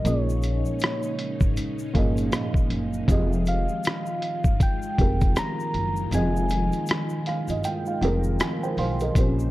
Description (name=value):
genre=lo-fi hip hop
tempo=79 BPM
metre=4/4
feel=swing 60% on 16ths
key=unclear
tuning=A4 = 440 Hz
part: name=soft struck synth lead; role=melody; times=0.0-7.6 s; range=Db5 to Bb5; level=-31 LUFS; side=left 1 dB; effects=chorus, low-pass filter
part: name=felt-muted upright piano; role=accompaniment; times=0.0-9.5 s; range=Bb2 to C6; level=-28 LUFS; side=right 1 dB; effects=cassette tape, low-pass filter
part: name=string machine, violas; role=sustained chords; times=0.0-9.5 s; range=Db3 to C5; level=-32 LUFS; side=equal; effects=ensemble chorus, low-pass filter
part: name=upright bass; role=bass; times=0.0-9.5 s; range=F1 to Cb2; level=-26 LUFS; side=equal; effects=none
part: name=lo-fi sampler-style drum kit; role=drums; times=0.1-9.4 s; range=hi-hat, kick drum, rim click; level=-24 LUFS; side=equal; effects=none
part: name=tube shaker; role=percussion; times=0.1-9.5 s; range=none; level=-47 LUFS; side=left 6 dB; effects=none
room=small room ambience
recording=dark, warm production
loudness=-22 LUFS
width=side -17 dB against mid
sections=0.0-9.2 A section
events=kick muted 6.1-9.2; felt piano fill 6.9-9.2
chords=0.0 Bbm7; 3.1 Fm9